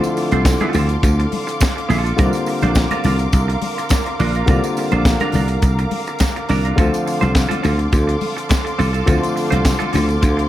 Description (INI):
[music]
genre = disco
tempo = 104 BPM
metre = 4/4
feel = straight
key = unclear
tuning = A4 = 439 Hz
[part]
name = dark grand piano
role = accompaniment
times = 0.0-10.5 s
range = D3 to F4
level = -23 LUFS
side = left 2 dB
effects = none
[part]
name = semi-hollow electric guitar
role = accompaniment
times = 0.0-10.4 s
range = C4 to C5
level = -25 LUFS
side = right 5 dB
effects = none
[part]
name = dark studio string section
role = sustained chords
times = 0.0-10.5 s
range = A4 to D6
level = -25 LUFS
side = equal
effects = none
[part]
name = tight funk drum kit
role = drums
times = 0.0-10.5 s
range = handclaps, hi-hat, kick drum, snare drum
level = -19 LUFS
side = equal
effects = none
[part]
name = tambourine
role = percussion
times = 0.0-10.4 s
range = none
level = -35 LUFS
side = right 7 dB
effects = none
[part]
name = dry thumbed slap bass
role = bass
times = 0.3-10.5 s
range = Bb1 to D2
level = -17 LUFS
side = equal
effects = none
[part]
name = congas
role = percussion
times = 0.3-10.4 s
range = none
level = -28 LUFS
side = left 5 dB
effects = none
[sound]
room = light reverb, small room ambience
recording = none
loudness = -15 LUFS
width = side -13 dB against mid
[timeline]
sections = 0.0-10.5 A section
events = none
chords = 0.0 Dm7; 2.2 C9sus4; 6.8 Dm7